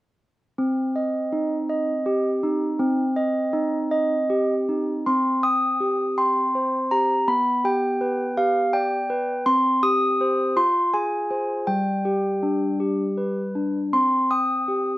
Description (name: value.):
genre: classical, lullaby for handbells.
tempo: 54 BPM (dotted quarters).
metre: 6/8.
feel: straight.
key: C minor.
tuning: A4 = 440 Hz.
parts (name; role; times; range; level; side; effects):
handbells; solo; 0.6-15.0 s; G3 to Eb6; -20 LUFS; equal; none.
room: light reverb.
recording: none.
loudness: -20 LUFS.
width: side -16 dB against mid.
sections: 0.6-5.1 A section; 5.1-15.0 B section.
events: none.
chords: 0.6 Cm; 7.3 G/B; 9.5 Cm; 10.6 Fm; 11.7 G; 13.9 Cm.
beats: | 0.58 1.70 | 2.79 3.91 | 5.06 6.18 | 7.28 8.38 | 9.47 10.57 | 11.68 12.81 | 13.93.